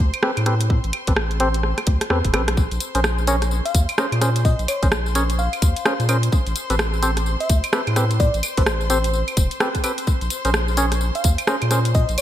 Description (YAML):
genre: UK garage, two-step garage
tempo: 128 BPM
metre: 4/4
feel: swing 61% on 16ths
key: Bb minor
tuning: A4 = 440 Hz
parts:
  - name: rich chamber violin section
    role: sustained chords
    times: 0.0-12.2 s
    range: C5 to C6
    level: -32 LUFS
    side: left 3 dB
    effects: sidechain pumping
  - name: saturated sub bass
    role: bass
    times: 0.0-12.2 s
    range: E1 to Bb2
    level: -21 LUFS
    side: equal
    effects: tube saturation
  - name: electronic kick drum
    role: drums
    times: 0.0-12.1 s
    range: none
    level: -19 LUFS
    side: equal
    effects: studio ambience
  - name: garage drum kit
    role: drums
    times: 0.1-12.2 s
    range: claves, hi-hat, rim click, tambourine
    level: -24 LUFS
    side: equal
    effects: studio ambience, gated reverb
  - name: percussive organ stab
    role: stabs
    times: 0.2-11.8 s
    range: C4 to Db5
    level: -25 LUFS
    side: equal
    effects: chorus, ping-pong delay
  - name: bell-like FM electric piano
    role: melody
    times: 3.7-12.2 s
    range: C5 to F5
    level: -28 LUFS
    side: left 1 dB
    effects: chorus, ping-pong delay
room: light reverb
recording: bright 1980s-style digital production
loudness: -18 LUFS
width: side -12 dB against mid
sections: 0.0-12.2 A section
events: drum fill 1.6-2.6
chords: 0.0 Am9; 2.6 Bbm9; 6.3 Am9; 10.1 Bbm9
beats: 0.23 | 0.70 1.17 1.64 2.10 | 2.57 3.04 3.51 3.98 | 4.45 4.92 5.39 5.86 | 6.32 6.79 7.26 7.73 | 8.20 8.67 9.14 9.61 | 10.07 10.54 11.01 11.48 | 11.95